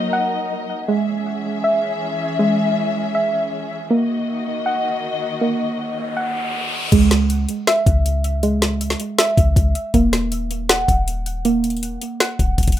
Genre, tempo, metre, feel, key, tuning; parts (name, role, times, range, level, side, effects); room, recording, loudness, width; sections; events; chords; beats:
hip hop, trap; 159 BPM; 4/4; half-time; A4 = 442 Hz
dark symphonic string section; sustained chords; 0.0-6.9 s; Eb3 to Fb5; -24 LUFS; left 4 dB
soft round pluck; arpeggios; 0.0-12.8 s; Ab3 to Gb5; -20 LUFS; right 2 dB; chorus, low-pass filter, tape echo
riser; sound effects; 5.8-6.9 s; -27 LUFS; left 1 dB
clean 808-style bass; bass; 6.9-12.8 s; Db1 to Db2; -19 LUFS; left 1 dB
trap drum kit; drums; 6.9-12.8 s; crash cymbal, hi-hat, kick drum, snare drum; -19 LUFS; left 1 dB
little or no reverb; rough home demo mix; -17 LUFS; side -12 dB against mid
0.9-6.9 A section; 6.9-12.8 B section
break 0.0-0.9; riser 5.8-6.9
0.0 Ebm; 0.9 Dbm; 3.9 Ebm; 6.9 Dbm; 9.9 Ebm
0.13 0.51 | 0.88 1.26 1.64 2.02 | 2.39 2.77 3.15 3.53 | 3.90 4.28 4.66 5.04 | 5.41 5.79 6.17 6.54 | 6.92 7.30 7.68 8.05 | 8.43 8.81 9.19 9.56 | 9.94 10.32 10.70 11.07 | 11.45 11.83 12.21 12.58